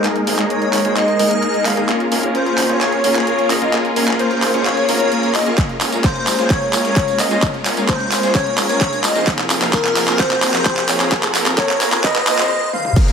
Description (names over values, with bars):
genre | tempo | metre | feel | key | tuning
EDM, festival progressive house | 130 BPM | 4/4 | straight | F minor | A4 = 439 Hz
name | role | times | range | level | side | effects
airy dreamy lead | melody | 0.0-12.9 s | Bb4 to F5 | -20 LUFS | equal | chorus, digital delay
clear symphonic string section | sustained chords | 0.0-13.1 s | C3 to Bb4 | -24 LUFS | left 2 dB | sidechain pumping, low-pass filter
big supersaw lead | riff | 0.0-13.1 s | Ab3 to Db5 | -20 LUFS | equal | sidechain pumping, low-pass filter, digital delay
pop drum kit | drums | 0.0-13.1 s | crash cymbal, handclaps, hi-hat, tambourine, toms | -20 LUFS | equal | overdrive
wide detuned saw bass | bass | 0.3-12.4 s | F1 to Bb1 | -29 LUFS | equal | none
electronic kick drum | drums | 5.6-13.1 s | none | -18 LUFS | equal | overdrive
riser and impact | sound effects | 7.6-13.1 s | none | -26 LUFS | equal | none
room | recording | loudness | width
moderate lush hall reverb, RT60 2.2 s | high-pass filter | -14 LUFS | side -6 dB against mid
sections
0.0-13.0 A section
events
build-up 0.0-13.0; drum fill 0.0-12.5, 12.7; filter sweep on supersaw synth 0.0-13.0; filter sweep on string section 0.0-13.0; riser 7.6-12.5; break 12.5-13.0; impact 13.0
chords
0.0 Absus2; 1.9 Db6/Ab; 5.6 Bbm7; 9.3 Fm